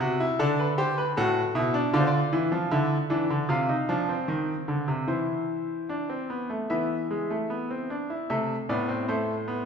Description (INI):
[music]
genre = classical, baroque-style 3-part fugue for grand piano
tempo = 76 BPM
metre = 4/4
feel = straight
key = A minor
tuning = A4 = 440 Hz
[part]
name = bright grand piano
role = solo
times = 0.0-9.7 s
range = A2 to F5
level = -24 LUFS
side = equal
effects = none
[sound]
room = wet recital hall reverb, RT60 1.8 s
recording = heard from further back in the room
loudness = -24 LUFS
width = side -6 dB against mid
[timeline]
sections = 0.0-8.3 A section; 8.3-9.7 B section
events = none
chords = 0.4 D; 1.9 Dm; 3.5 F5/C; 5.1 Am/E (rootless); 6.7 E5; 8.3 Am